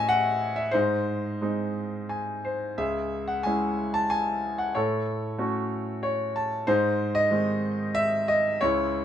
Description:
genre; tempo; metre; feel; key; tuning
classical, lyrical solo piano; 92 BPM; 3/4; rubato; unclear; A4 = 440 Hz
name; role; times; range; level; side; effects
bright concert grand piano; solo; 0.0-9.0 s; C#2 to A5; -24 LUFS; equal; none
room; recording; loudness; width
light reverb; minimal, uncompressed stereo recording; -24 LUFS; side -10 dB against mid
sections
0.0-9.0 A section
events
grand piano fill 1.7-2.8, 5.7-6.7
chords
0.0 A; 0.7 G#; 2.8 C#m; 4.8 F#m/A; 6.7 G#

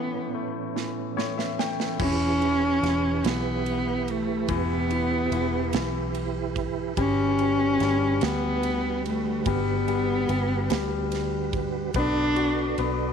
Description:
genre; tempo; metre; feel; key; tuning
six-eight pop ballad; 48 BPM (dotted quarters); 6/8; straight; unclear; A4 = 445 Hz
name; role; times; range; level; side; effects
dark cello; melody; 0.0-12.7 s; A3 to D4; -26 LUFS; equal; none
clear grand piano; accompaniment; 0.0-13.1 s; A2 to G5; -30 LUFS; left 13 dB; none
mellow tonewheel organ; sustained chords; 0.0-13.1 s; A2 to D5; -31 LUFS; right 13 dB; chorus vibrato, fast rotary speaker
modern studio drum kit; drums; 0.8-13.0 s; crash cymbal, kick drum, ride cymbal, snare drum; -33 LUFS; right 6 dB; none
vintage muted fingered electric bass; bass; 2.0-13.1 s; E1 to D2; -30 LUFS; equal; none
room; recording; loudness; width
light reverb, small room ambience; 1960s-style stereo with parts hard left and right; -23 LUFS; side -7 dB against mid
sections
0.0-2.0 A section; 2.0-13.1 B section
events
grand piano fill 0.8-2.0; drum fill 0.8-2.0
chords
0.0 Aadd9; 2.0 Em; 7.0 Gmaj7; 11.9 Bm7

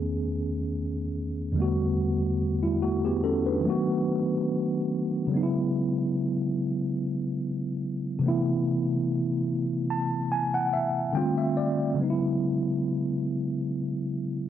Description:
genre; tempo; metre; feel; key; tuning
R&B; 72 BPM; 4/4; swing 54% on 16ths; E major; A4 = 445 Hz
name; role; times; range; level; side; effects
mellow tine electric piano; solo; 0.0-14.5 s; E2 to A5; -25 LUFS; equal; medium stereo tremolo, cassette tape
room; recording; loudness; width
moderate booth ambience, RT60 0.2 s; home recording on cassette; -25 LUFS; side -10 dB against mid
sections
0.0-5.3 A section; 5.3-14.5 B section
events
tine electric piano fill 9.5-12.0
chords
0.0 Amaj9#11/E; 1.6 Gmaj9/E; 3.6 B7; 5.3 E69; 8.2 Amadd9; 11.1 F69; 12.0 E69

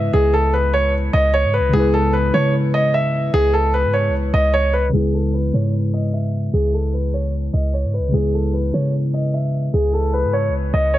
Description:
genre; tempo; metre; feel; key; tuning
hip hop, trap; 150 BPM; 4/4; half-time; C# minor; A4 = 440 Hz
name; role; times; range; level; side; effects
dark baby grand piano; melody; 0.0-11.0 s; G#4 to E5; -20 LUFS; equal; none
muted felt-like synth keys; accompaniment; 0.0-11.0 s; C#3 to B4; -23 LUFS; left 2 dB; chorus
clean 808-style bass; bass; 0.0-11.0 s; C#2 to C#3; -19 LUFS; equal; none
room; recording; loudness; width
light reverb, small room ambience; low-pass filter; -16 LUFS; side -14 dB against mid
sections
0.0-4.9 A section; 4.9-11.0 B section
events
filter sweep 4.9-11.0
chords
0.0 C#m7

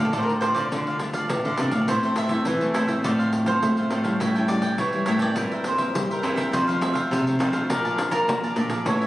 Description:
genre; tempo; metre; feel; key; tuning
samba and choro; 103 BPM; 4/4; straight; unclear; A4 = 442 Hz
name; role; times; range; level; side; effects
cavaquinho; melody; 0.0-9.1 s; A4 to F5; -28 LUFS; equal; none
cavaquinho; accompaniment; 0.0-9.1 s; D4 to A5; -29 LUFS; right 2 dB; none
nylon-string guitar; accompaniment; 0.0-9.1 s; F2 to F4; -28 LUFS; left 1 dB; none
nylon-string guitar; bass; 0.0-9.1 s; F2 to Bb3; -25 LUFS; equal; none
pandeiro; percussion; 0.1-9.1 s; none; -30 LUFS; left 1 dB; none
room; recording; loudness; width
moderate large studio reverb, RT60 1.4 s; recorded on a phone in the room, club reverb; -21 LUFS; side -16 dB against mid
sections
0.0-1.9 A section; 1.9-9.1 B section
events
none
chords
0.0 Dm; 1.9 Am; 3.0 F/A; 4.2 A7; 5.4 C7/G; 6.5 F; 7.7 Bbmaj7

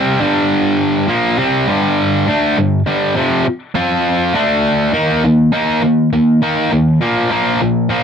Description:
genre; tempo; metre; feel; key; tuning
rock; 101 BPM; 4/4; straight; unclear; A4 = 442 Hz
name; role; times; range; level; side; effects
sludgy distorted guitar; solo; 0.0-8.0 s; F2 to F4; -12 LUFS; equal; overdrive
room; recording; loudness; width
moderate studio reverb, RT60 0.5 s; dry, close 1970s-style studio recording; -12 LUFS; side -7 dB against mid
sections
0.0-4.9 A section; 4.9-8.0 B section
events
none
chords
0.0 G5; 3.8 F5; 4.4 D5; 4.9 Eb5; 7.0 Bb5

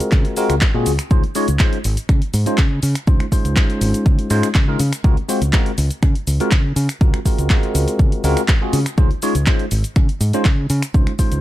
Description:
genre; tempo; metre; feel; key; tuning
filtered disco house; 122 BPM; 4/4; straight; Db major; A4 = 443 Hz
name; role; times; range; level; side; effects
bell-like tine electric piano; accompaniment; 0.0-11.4 s; Ab3 to Db5; -21 LUFS; left 1 dB; phaser, sidechain pumping, low-pass filter
punchy analog drum machine; drums; 0.0-11.4 s; cabasa, finger snaps, handclaps, hi-hat; -25 LUFS; equal; sidechain pumping on hats, sidechain pumping on perc
fingered electric bass; bass; 0.1-11.4 s; Ab1 to Db3; -19 LUFS; equal; sidechain pumping, low-pass filter
electronic kick drum; drums; 0.1-11.3 s; none; -15 LUFS; equal; none
egg shaker; percussion; 1.1-11.4 s; none; barely audible; none; none
room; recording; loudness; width
little or no reverb; none; -14 LUFS; side -14 dB against mid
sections
0.0-11.4 A section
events
none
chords
0.0 Ab13/Db; 1.1 Dbmaj9; 4.8 Ab13/Db; 9.0 Dbmaj9

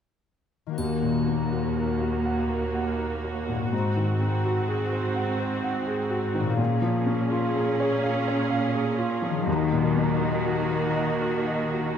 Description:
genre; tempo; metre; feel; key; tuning
cinematic, emotional film score for orchestra; 62 BPM; 3/4; rubato; Eb dorian; A4 = 440 Hz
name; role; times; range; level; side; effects
concert harp; arpeggios; 0.7-12.0 s; Ab2 to Bb4; -30 LUFS; left 10 dB; none
clear grand piano; accompaniment; 0.8-12.0 s; Eb2 to Gb5; -27 LUFS; equal; none
clear symphonic viola section; accompaniment; 0.8-12.0 s; Bb3 to Ab4; -30 LUFS; right 3 dB; none
rich symphonic cello section; bass; 0.8-12.0 s; Eb2 to Eb3; -30 LUFS; right 3 dB; none
triangle; percussion; 0.8-2.7 s; none; -47 LUFS; left 1 dB; none
room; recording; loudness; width
light reverb; close, detailed microphones; -23 LUFS; side -8 dB against mid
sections
0.8-12.0 A section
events
none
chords
0.8 Ebm; 3.7 Ab7; 6.6 Bbm7; 9.5 Ebm

